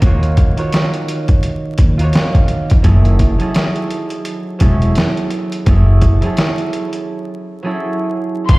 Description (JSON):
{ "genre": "hip hop, boom-bap hip-hop", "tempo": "85 BPM", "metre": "4/4", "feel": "swing 59% on 16ths", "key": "unclear", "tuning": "A4 = 437 Hz", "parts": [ { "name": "concert harp", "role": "accompaniment", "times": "0.0-8.6 s", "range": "Eb3 to Db5", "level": "-20 LUFS", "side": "right 2 dB", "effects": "cassette tape, high-pass filter, low-pass filter" }, { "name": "upright bass", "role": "bass", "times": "0.0-8.6 s", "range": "Fb1 to Eb2", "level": "-13 LUFS", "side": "equal", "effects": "none" }, { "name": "trip hop sampler-style drum kit", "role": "drums", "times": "0.0-8.6 s", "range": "hi-hat, kick drum, snare drum", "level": "-14 LUFS", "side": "equal", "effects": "overdrive" }, { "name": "warm studio violin section", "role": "melody", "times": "8.5-8.6 s", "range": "C6", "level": "-20 LUFS", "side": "left 5 dB", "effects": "high-pass filter, low-pass filter" }, { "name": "bright studio string section", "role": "sustained chords", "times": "8.5-8.6 s", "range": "Eb3 to F5", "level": "-27 LUFS", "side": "left 2 dB", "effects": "high-pass filter, low-pass filter" } ], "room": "light reverb, studio ambience", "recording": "played on a big sound system in a bare room, large studio reverb, vinyl crackle", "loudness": "-12 LUFS", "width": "side -21 dB against mid", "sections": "0.0-8.5 A section", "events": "break 7.1-8.5", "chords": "0.0 Ebm9; 2.8 Gbm9" }